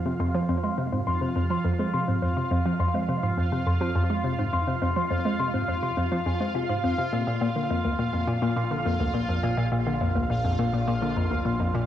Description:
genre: ambient, sequencer-driven space music.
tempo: 104 BPM.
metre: 4/4.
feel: straight.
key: unclear.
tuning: A4 = 440 Hz.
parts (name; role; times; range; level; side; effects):
analog drone; bass; 0.0-11.9 s; Bb1 to F2; -34 LUFS; right 1 dB; chorus, phaser.
bubbling stepped-filter texture; texture; 0.0-11.9 s; F4 to F5; -31 LUFS; right 1 dB; chorus, built-in reverb, cassette tape, shimmer reverb.
thumb-piano-like synth pluck; arpeggios; 0.1-11.8 s; Bb3 to C6; -30 LUFS; left 5 dB; chorus, auto-pan, cassette tape, tape echo, shimmer reverb.
hollow square pluck; riff; 0.1-11.8 s; D2 to Ab3; -26 LUFS; right 1 dB; chorus, phaser, cassette tape, tape echo.
room: wet spring reverb, RT60 1.2 s.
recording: home recording on cassette.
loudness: -23 LUFS.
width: side -11 dB against mid.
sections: 0.0-11.9 A section.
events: filter sweep on synth arpeggio sound 0.0-11.9.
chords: 0.0 Fm; 7.1 Bb.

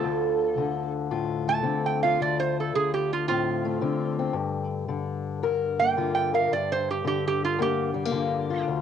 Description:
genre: acoustic country blues, solo or duo.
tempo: 111 BPM.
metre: 4/4.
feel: swing 68% on 8ths.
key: unclear.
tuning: A4 = 438 Hz.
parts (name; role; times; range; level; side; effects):
metal-body resonator slide guitar; melody; 0.0-8.7 s; F4 to A5; -26 LUFS; right 6 dB; none.
fingerpicked steel-string acoustic guitar; accompaniment; 0.0-8.8 s; D2 to Bb4; -27 LUFS; left 7 dB; cassette tape.
room: light reverb, studio reverb.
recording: home recording on cassette, nothing above 10.3 kHz.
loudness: -24 LUFS.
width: side -8 dB against mid.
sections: 0.0-8.8 A section.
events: resonator guitar played with a steel bar solo 0.0-8.8.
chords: 0.0 Dm7; 4.4 Gm7.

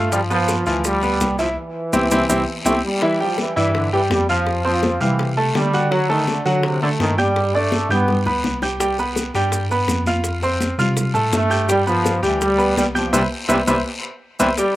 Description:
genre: latin, salsa.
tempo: 166 BPM.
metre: 4/4.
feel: straight.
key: C major.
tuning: A4 = 439 Hz.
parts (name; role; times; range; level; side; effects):
bright trombone section; melody; 0.0-8.2, 11.4-14.8 s; C3 to B3; -21 LUFS; right 1 dB; slapback echo.
bright grand piano; accompaniment; 0.0-14.7 s; E3 to G6; -20 LUFS; equal; slapback echo.
mellow tine electric piano; bass; 0.0-14.5 s; C2 to D3; -24 LUFS; equal; medium stereo tremolo.
bongos; percussion; 0.1-14.8 s; none; -29 LUFS; left 4 dB; slapback echo.
congas; percussion; 0.1-14.8 s; none; -26 LUFS; left 1 dB; none.
guiro; percussion; 0.1-14.8 s; none; -32 LUFS; left 3 dB; none.
maracas; percussion; 0.1-2.7, 8.8-14.8 s; none; -28 LUFS; right 3 dB; none.
room: little or no reverb.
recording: recorded outdoors, with no room sound.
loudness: -16 LUFS.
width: side -15 dB against mid.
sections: 0.0-3.0 A section; 3.0-14.6 A section.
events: band accent 1.6-3.0, 13.1-14.6; drum fill 2.1-3.0, 8.1-8.8, 13.5-14.6.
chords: 0.1 G7; 1.6 C; 3.0 Em; 4.5 Fmaj9; 5.9 D; 7.4 Gadd9; 8.8 C5; 10.2 Fadd9; 11.7 G7; 13.1 Cmaj7.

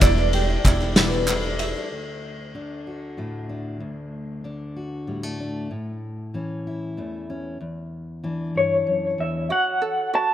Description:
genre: indie folk with a building arrangement.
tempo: 63 BPM (dotted quarters).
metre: 6/8.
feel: straight.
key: D major.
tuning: A4 = 440 Hz.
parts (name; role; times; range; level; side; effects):
electric guitar through a small old amp; melody; 0.0-1.2, 8.6-10.3 s; C#5 to A5; -22 LUFS; equal; tremolo, analog delay.
picked twelve-string acoustic guitar; accompaniment; 0.0-1.9 s; E2 to E4; -27 LUFS; left 3 dB; lush chorus.
ukulele; arpeggios; 0.0-1.9, 9.5-10.3 s; E4 to E5; -30 LUFS; right 5 dB; analog delay.
upright bass; bass; 0.0-1.7 s; E1; -24 LUFS; equal; none.
loose indie drum kit; drums; 0.0-1.7 s; kick drum, ride cymbal, snare drum; -21 LUFS; equal; none.
group handclap; percussion; 0.0-1.4 s; none; -29 LUFS; right 1 dB; none.
fingerpicked steel-string acoustic guitar; accompaniment; 1.9-9.5 s; D2 to F#4; -30 LUFS; left 1 dB; none.
room: light reverb.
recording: rough home demo mix.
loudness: -23 LUFS.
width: side -12 dB against mid.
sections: 0.0-1.9 A section; 1.9-9.5 B section.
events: none.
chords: 0.0 Em7; 1.9 D; 5.7 A; 7.6 Em7; 9.5 D (rootless).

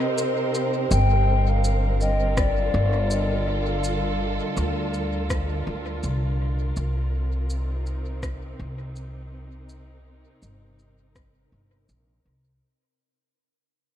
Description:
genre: ambient dub.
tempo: 82 BPM.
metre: 4/4.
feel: swing 56% on 16ths.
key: C dorian.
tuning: A4 = 440 Hz.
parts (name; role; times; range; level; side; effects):
mellow hollow silver concert flute; melody; 0.0-4.9 s; D5 to G5; -29 LUFS; left 2 dB; dub echo.
dark studio string section; sustained chords; 0.0-12.6 s; C3 to C5; -29 LUFS; right 1 dB; none.
bubbling stepped-filter texture; texture; 0.0-0.9 s; G4; -36 LUFS; right 3 dB; chorus, built-in reverb.
electronic shaker and rim click; drums; 0.2-12.1 s; none; -36 LUFS; left 1 dB; overdrive, studio reverb, dub echo.
upright bass; bass; 0.9-12.6 s; G1 to D2; -24 LUFS; equal; none.
electronic kick drum; drums; 2.4-11.3 s; none; -28 LUFS; equal; overdrive, studio reverb.
room: moderate cathedral reverb, RT60 6.2 s.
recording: dreamy mix soaked in reverb.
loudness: -22 LUFS.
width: side -10 dB against mid.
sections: 0.9-12.6 A section.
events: break 0.0-0.9; fade-out 0.9-12.6.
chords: 0.0 Cm7; 0.9 Gm9; 6.8 Cm7.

